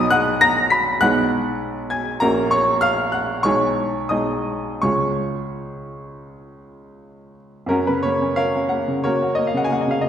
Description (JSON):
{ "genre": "classical, romantic character piece for solo piano", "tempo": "80-101 BPM", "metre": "4/4", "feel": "rubato", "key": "F# major", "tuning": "A4 = 438 Hz", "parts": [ { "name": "clear baby grand piano", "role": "solo", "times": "0.0-10.1 s", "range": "A#1 to B6", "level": "-17 LUFS", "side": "equal", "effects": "none" } ], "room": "wet scoring stage reverb, RT60 1.5 s", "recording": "none", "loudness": "-17 LUFS", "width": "side -9 dB against mid", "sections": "0.0-7.7 A section; 7.7-10.1 B section", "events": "none", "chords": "0.0 B; 1.0 G#m/B; 2.2 F#/A#; 3.5 G#m/B; 4.8 C#; 7.7 F#" }